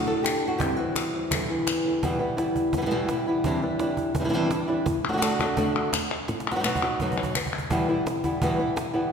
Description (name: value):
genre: flamenco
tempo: 169 BPM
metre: 4/4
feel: straight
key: E minor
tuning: A4 = 440 Hz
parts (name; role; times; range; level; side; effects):
- flamenco guitar; melody; 0.0-9.1 s; E2 to A4; -25 LUFS; equal; none
- flamenco guitar; stabs; 0.0-2.0 s; E2 to E4; -30 LUFS; right 1 dB; none
- cajon; percussion; 0.2-8.9 s; none; -32 LUFS; right 2 dB; none
- palmas hand claps; percussion; 0.3-1.9, 5.0-7.7 s; none; -30 LUFS; left 4 dB; none
room: wet scoring stage reverb, RT60 1.8 s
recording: recorded in a church or concert hall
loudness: -23 LUFS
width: side -6 dB against mid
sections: 0.0-2.0 A section; 2.0-7.7 B section; 7.7-9.1 B section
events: drum fill 6.3-7.7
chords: 0.0 Dadd9; 0.6 C; 1.3 Em7; 2.0 Em; 3.4 Cadd9/E; 4.9 D; 6.3 B; 7.7 Em